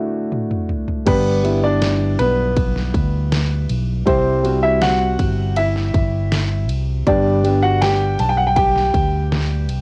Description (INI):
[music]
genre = pop ballad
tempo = 80 BPM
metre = 4/4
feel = straight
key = G major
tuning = A4 = 439 Hz
[part]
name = warm grand piano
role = melody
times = 0.0-9.7 s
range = B3 to A5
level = -22 LUFS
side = equal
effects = plate reverb
[part]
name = dark upright piano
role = accompaniment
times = 0.0-9.8 s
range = G2 to G4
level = -25 LUFS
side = equal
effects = cassette tape, plate reverb
[part]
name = pop drum kit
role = drums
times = 0.3-9.8 s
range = crash cymbal, kick drum, ride cymbal, snare drum, toms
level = -25 LUFS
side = equal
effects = cassette tape
[part]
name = fingered electric bass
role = bass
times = 1.1-9.8 s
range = G1 to D2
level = -22 LUFS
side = equal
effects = none
[sound]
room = light reverb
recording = home recording on cassette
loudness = -18 LUFS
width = mono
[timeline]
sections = 0.0-1.1 A section; 1.1-9.8 B section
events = break 0.0-1.1; drum fill 0.0-1.1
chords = 0.0 D; 1.1 G; 4.1 C; 7.1 G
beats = 0.32 | 1.07 1.82 2.57 3.32 | 4.07 4.82 5.57 6.32 | 7.07 7.82 8.57 9.32